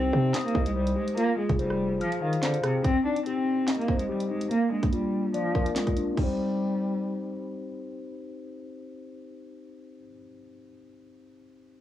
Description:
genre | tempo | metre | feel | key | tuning
hip hop, drill | 144 BPM | 4/4 | half-time | C minor | A4 = 440 Hz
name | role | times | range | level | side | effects
warm cello | melody | 0.0-7.4 s | C3 to D4 | -28 LUFS | right 1 dB | low-pass filter, cassette tape
mellow tine electric piano | accompaniment | 0.0-11.8 s | Bb3 to F6 | -32 LUFS | left 4 dB | medium stereo tremolo, low-pass filter, cassette tape
distorted 808-style bass | bass | 0.0-2.0 s | F1 to C3 | -28 LUFS | right 1 dB | distortion
drill drum kit | drums | 0.3-6.3 s | crash cymbal, handclaps, hi-hat, kick drum, rim click, snare drum | -28 LUFS | right 1 dB | cassette tape
room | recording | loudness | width
light reverb | home recording on cassette | -24 LUFS | side -12 dB against mid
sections
0.0-2.8 A section; 2.8-6.2 B section; 6.2-9.5 C section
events
kick muted 2.0-2.8; filter sweep 2.8-6.2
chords
0.0 Cm; 1.2 Fm; 2.8 Cm; 4.5 Bb; 6.2 Cm

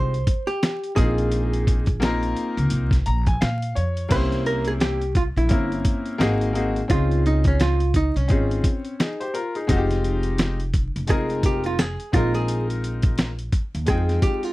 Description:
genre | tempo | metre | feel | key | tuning
hip hop, jazz-hop | 86 BPM | 4/4 | swing 60% on 16ths | F minor | A4 = 440 Hz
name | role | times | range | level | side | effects
hollow-body jazz guitar | melody | 0.0-14.5 s | Db4 to C5 | -26 LUFS | right 3 dB | none
clear baby grand piano | accompaniment | 0.0-14.5 s | Ab3 to Bb5 | -26 LUFS | left 2 dB | none
upright bass | bass | 0.0-14.2 s | F1 to Bb2 | -23 LUFS | equal | none
dusty soul sampler-style drum kit | drums | 0.1-14.5 s | crash cymbal, hi-hat, kick drum, snare drum | -22 LUFS | equal | none
room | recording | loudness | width
little or no reverb | dry, close 1970s-style studio recording, vinyl crackle | -20 LUFS | side -18 dB against mid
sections
0.0-4.1 A section; 4.1-14.5 B section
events
grand piano fill 2.7-4.1; hollow-body jazz guitar solo 4.1-14.5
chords
0.0 Fm7; 1.0 Bb7sus4; 4.1 C7b9; 6.2 Ab9; 6.9 Dbmaj9; 9.7 Fm7; 12.1 Bb7sus4

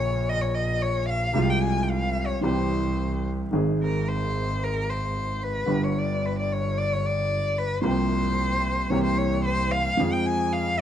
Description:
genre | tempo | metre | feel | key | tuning
tango | 111 BPM | 4/4 | rubato | unclear | A4 = 440 Hz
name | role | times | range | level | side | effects
warm cello | second line | 0.0-10.8 s | Bb4 to Ab5 | -27 LUFS | left 2 dB | none
warm baby grand piano | accompaniment | 0.0-10.8 s | G1 to Ab4 | -26 LUFS | right 1 dB | none
clear double bass | bass | 0.0-10.8 s | G1 to F2 | -29 LUFS | right 2 dB | none
room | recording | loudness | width
moderate large studio reverb, RT60 1.2 s | none | -23 LUFS | side -10 dB against mid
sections
0.0-10.8 A section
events
cello solo 0.0-10.8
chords
0.0 Bbm; 1.4 Fm/C; 2.4 C; 3.5 Ab; 5.7 G; 7.8 C7sus4; 8.9 C7; 10.0 Fm

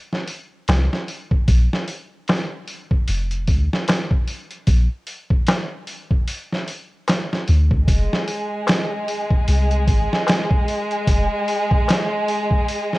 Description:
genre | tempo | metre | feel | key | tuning
trip hop | 75 BPM | 4/4 | swing 58% on 16ths | unclear | A4 = 441 Hz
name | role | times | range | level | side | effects
trip hop sampler-style drum kit | drums | 0.1-13.0 s | hi-hat, kick drum, snare drum | -20 LUFS | equal | none
soft 808-style bass | bass | 0.7-11.3 s | F1 to D2 | -17 LUFS | equal | none
darbuka | percussion | 0.7-12.1 s | none | -25 LUFS | left 2 dB | none
dark chamber violin section | sustained chords | 7.9-13.0 s | Ab3 to Ab4 | -22 LUFS | equal | none
room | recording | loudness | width
little or no reverb | worn, warbling old tape, cassette tape, warbly pitch drift | -18 LUFS | side -20 dB against mid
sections
0.0-13.0 A section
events
none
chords
0.0 N.C.; 1.5 Bb; 7.9 N.C.

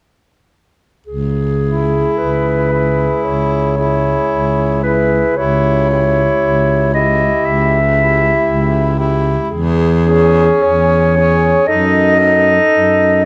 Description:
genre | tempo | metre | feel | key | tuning
classical, lyrical piece for single-reed quartet | 51-59 BPM | 4/4 | rubato | C# minor | A4 = 440 Hz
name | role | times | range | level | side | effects
warm clarinet | melody | 1.1-13.3 s | G#4 to E5 | -17 LUFS | equal | none
clear baritone saxophone | bass | 1.1-13.3 s | C#2 to F#2 | -18 LUFS | equal | none
mellow alto saxophone | second line | 1.6-13.2 s | G4 to A4 | -23 LUFS | equal | none
clear tenor saxophone | accompaniment | 1.6-13.2 s | C#4 to E4 | -20 LUFS | equal | none
room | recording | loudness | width
moderate recital hall reverb, RT60 1.6 s | none | -14 LUFS | mono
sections
1.1-13.3 A section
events
none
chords
1.1 C#m; 9.5 C#m/E; 11.7 D#dim/F#

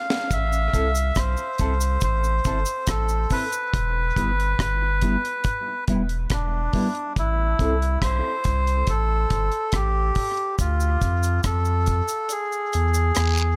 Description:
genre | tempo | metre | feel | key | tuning
dub reggae | 70 BPM | 4/4 | straight | A minor | A4 = 440 Hz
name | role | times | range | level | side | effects
melodica | melody | 0.0-13.6 s | D4 to F5 | -27 LUFS | equal | dub echo
deep reggae drum kit | drums | 0.1-13.4 s | hi-hat, kick drum, rim click, snare drum | -28 LUFS | equal | none
warm sub bass | bass | 0.3-13.5 s | E1 to F2 | -25 LUFS | equal | none
cabasa and guiro | percussion | 0.3-3.7, 10.6-13.6 s | none | -36 LUFS | equal | none
mellow electric guitar | accompaniment | 0.7-7.7 s | G3 to A4 | -33 LUFS | equal | phaser, high-pass filter, dub echo
room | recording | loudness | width
light reverb, small room ambience | none | -23 LUFS | mono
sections
0.0-13.6 A section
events
drum fill 0.0-0.3; part muted 3.7-10.6; kick muted 12.3-13.6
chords
0.3 Am; 3.7 Em; 7.2 Am; 10.6 Dm; 12.3 E

